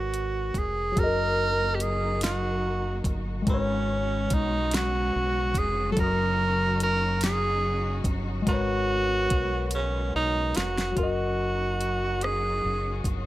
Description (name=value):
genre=slow six-eight R&B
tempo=48 BPM (dotted quarters)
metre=6/8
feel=straight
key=F# major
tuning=A4 = 438 Hz
part: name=warm tenor saxophone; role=melody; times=0.0-13.1 s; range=C#4 to A#4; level=-27 LUFS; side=right 2 dB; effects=none
part: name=tine electric piano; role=accompaniment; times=0.0-13.3 s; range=F#3 to D#5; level=-31 LUFS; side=left 4 dB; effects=phaser
part: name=deep dub fingered electric bass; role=bass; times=0.0-13.3 s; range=E#1 to B1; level=-30 LUFS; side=equal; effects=none
part: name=smooth R&B drum kit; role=drums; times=0.1-13.2 s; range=hi-hat, kick drum, rim click, snare drum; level=-28 LUFS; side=equal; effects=none
part: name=warm studio string section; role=sustained chords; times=1.0-13.3 s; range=C#3 to F#4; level=-38 LUFS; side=equal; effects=none
room=little or no reverb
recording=none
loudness=-24 LUFS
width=side -15 dB against mid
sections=1.0-11.0 A section; 11.0-13.3 B section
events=drum fill 9.7-11.0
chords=0.0 G#m11; 1.0 F#6; 3.5 G#m11; 6.0 F#6; 8.5 G#m11; 11.0 F#6